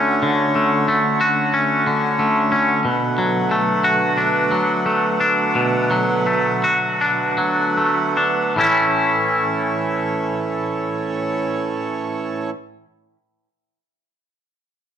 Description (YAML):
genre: rock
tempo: 73-91 BPM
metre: 4/4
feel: straight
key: A major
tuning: A4 = 439 Hz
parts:
  - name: hand-pumped harmonium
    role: sustained chords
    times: 0.0-12.5 s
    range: D3 to C#5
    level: -23 LUFS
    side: right 4 dB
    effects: none
  - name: twangy electric guitar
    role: arpeggios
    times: 0.0-12.6 s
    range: A2 to F#4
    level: -17 LUFS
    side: left 1 dB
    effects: harmonic tremolo, analog delay
room: moderate large studio reverb, RT60 0.9 s, small room ambience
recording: none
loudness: -16 LUFS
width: side -8 dB against mid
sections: 0.0-8.6 A section; 8.6-11.9 B section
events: slowing down 2.9-8.6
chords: 0.0 Dmaj7; 2.9 Bm7; 8.6 A